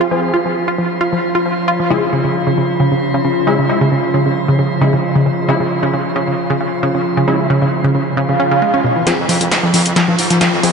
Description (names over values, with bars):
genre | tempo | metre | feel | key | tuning
driving peak-time techno | 134 BPM | 4/4 | straight | unclear | A4 = 440 Hz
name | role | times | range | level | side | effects
wide unison pluck | riff | 0.0-10.7 s | B2 to F4 | -15 LUFS | right 1 dB | diffuse ambient delay
metallic inharmonic drone | drone | 0.0-10.7 s | F3 to F4 | -19 LUFS | equal | chorus, built-in reverb
rave stab | stabs | 0.1-10.7 s | Db3 to Ab4 | -21 LUFS | left 2 dB | chorus, built-in reverb, tape echo
swell and riser | sound effects | 8.3-10.7 s | none | -20 LUFS | right 3 dB | none
punchy analog drum machine | drums | 9.1-10.7 s | hi-hat, snare drum | -16 LUFS | equal | high-pass filter on snare, high-pass filter on hats, high-pass filter on room
soft brush drum kit | drums | 9.1-10.7 s | ride cymbal, snare drum | -22 LUFS | right 2 dB | high-pass filter on cymbals, high-pass filter on snare, high-pass filter on room
growling FM bass | bass | 9.2-10.7 s | F2 to Ab2 | -22 LUFS | equal | high-pass filter
room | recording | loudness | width
wet huge ambient reverb, RT60 4.0 s | dreamy mix soaked in reverb, nothing above 10.8 kHz | -12 LUFS | side -5 dB against mid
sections
0.0-9.1 A section; 9.1-10.7 B section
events
filter sweep on synth arpeggio sound 0.0-9.1, 9.1-10.7; swell 8.3-9.1; build-up 9.1-10.7; drum fill 9.1-10.7; filter sweep on synth stab 9.1-10.7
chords
0.0 Fm; 1.9 Dbm; 9.1 Fm